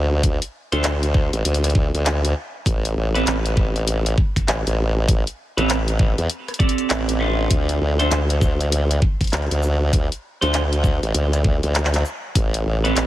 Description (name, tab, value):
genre	glitch hop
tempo	99 BPM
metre	4/4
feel	swing 62% on 16ths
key	D dorian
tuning	A4 = 439 Hz
part	formant-sweep wobble bass	bass	0.0-13.1 s	A1 to E2	-20 LUFS	equal	chorus, tube saturation
part	drum and bass drum kit	drums	0.2-13.1 s	handclaps, hi-hat, rim click, shaker	-25 LUFS	left 1 dB	none
part	electronic kick drum	drums	0.2-12.5 s	none	-18 LUFS	equal	none
part	clean electric guitar	stabs	0.7-13.0 s	C4 to E5	-25 LUFS	right 2 dB	sidechain pumping, ping-pong delay
room	little or no reverb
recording	heavily compressed radio sound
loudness	-18 LUFS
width	side -14 dB against mid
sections	0.0-13.1 A section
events	none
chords	0.0 N.C.; 2.7 Am7; 7.5 Dm; 12.4 Am9